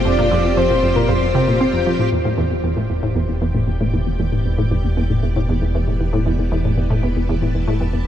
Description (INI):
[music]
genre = ambient, sequencer-driven space music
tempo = 116 BPM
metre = 4/4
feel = straight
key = E minor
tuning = A4 = 442 Hz
[part]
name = string machine, full ensemble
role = sustained chords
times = 0.0-8.1 s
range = B3 to A5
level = -24 LUFS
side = left 1 dB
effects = ensemble chorus
[part]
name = warm sub bass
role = bass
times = 0.0-8.1 s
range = E1 to F1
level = -23 LUFS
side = equal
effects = none
[part]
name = breathy flute-like synth lead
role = melody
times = 0.1-1.9 s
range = Bb4 to D5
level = -23 LUFS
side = left 1 dB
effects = lush chorus, tape echo
[part]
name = resonant blip pluck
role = riff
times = 0.1-8.0 s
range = E2 to C4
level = -18 LUFS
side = equal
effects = lush chorus, tape echo
[sound]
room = moderate huge ambient reverb, RT60 8.7 s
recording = none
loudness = -16 LUFS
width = side -10 dB against mid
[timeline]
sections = 0.0-2.1 A section; 2.1-8.1 B section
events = none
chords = 0.0 Fsus2; 2.1 Em7